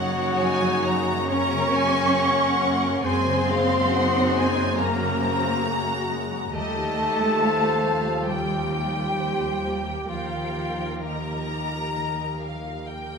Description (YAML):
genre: cinematic, emotional film score for orchestra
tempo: 64-71 BPM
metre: 4/4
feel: rubato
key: unclear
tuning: A4 = 440 Hz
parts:
  - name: rich studio violin section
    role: melody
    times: 0.0-13.2 s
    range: Eb5 to Bb5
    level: -30 LUFS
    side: left 3 dB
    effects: none
  - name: dark studio violin section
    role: second line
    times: 0.0-12.9 s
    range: Eb5 to Db6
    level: -31 LUFS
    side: equal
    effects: none
  - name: flute section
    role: second line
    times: 0.0-12.9 s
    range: Eb5 to Db6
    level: -30 LUFS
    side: equal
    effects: none
  - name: warm clarinet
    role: second line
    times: 0.0-12.9 s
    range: Eb4 to Db5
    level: -29 LUFS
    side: left 1 dB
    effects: none
  - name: rich studio viola section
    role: accompaniment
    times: 0.0-13.2 s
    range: G3 to Db5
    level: -32 LUFS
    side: left 1 dB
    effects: none
  - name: mellow French horn section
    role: sustained chords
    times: 0.0-13.2 s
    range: F3 to Ab4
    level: -34 LUFS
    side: left 4 dB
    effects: none
  - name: concert harp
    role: arpeggios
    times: 0.0-13.2 s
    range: Gb2 to Db5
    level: -35 LUFS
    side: left 7 dB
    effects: none
  - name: rich studio cello section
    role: bass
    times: 0.0-12.9 s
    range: Eb3 to Db4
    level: -28 LUFS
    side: right 1 dB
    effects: none
  - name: warm symphonic double bass section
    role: bass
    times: 0.0-13.2 s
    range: Eb2 to Gb2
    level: -31 LUFS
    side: right 4 dB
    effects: none
room: wet scoring stage reverb, RT60 1.9 s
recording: minimal, uncompressed stereo recording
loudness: -21 LUFS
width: side -5 dB against mid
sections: 0.0-13.2 A section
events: none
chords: 0.0 Gbadd9; 6.5 Ebadd9